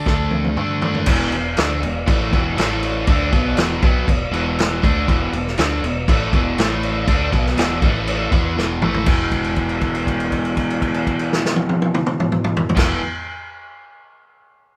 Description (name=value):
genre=blues rock power trio and southern rock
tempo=120 BPM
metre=4/4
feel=straight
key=unclear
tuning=A4 = 440 Hz
part: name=overdriven electric guitar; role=riff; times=0.0-13.0 s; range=E2 to E4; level=-24 LUFS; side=equal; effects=none
part: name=vintage muted fingered electric bass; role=bass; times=0.0-13.0 s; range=E1 to G2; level=-28 LUFS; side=equal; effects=none
part: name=vintage drum kit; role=drums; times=0.1-12.9 s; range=crash cymbal, kick drum, snare drum, toms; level=-22 LUFS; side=equal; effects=none
room=moderate studio reverb, RT60 0.6 s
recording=band playing live in one room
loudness=-19 LUFS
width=mono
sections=0.0-1.1 A section; 1.1-9.1 B section; 9.1-13.1 C section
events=drum fill 0.1-1.1, 8.6-9.1; held note 9.1-12.8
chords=0.0 D5; 1.1 E5; 2.6 A5; 3.1 E5; 6.6 A5; 7.1 E5; 7.8 A5; 8.3 E5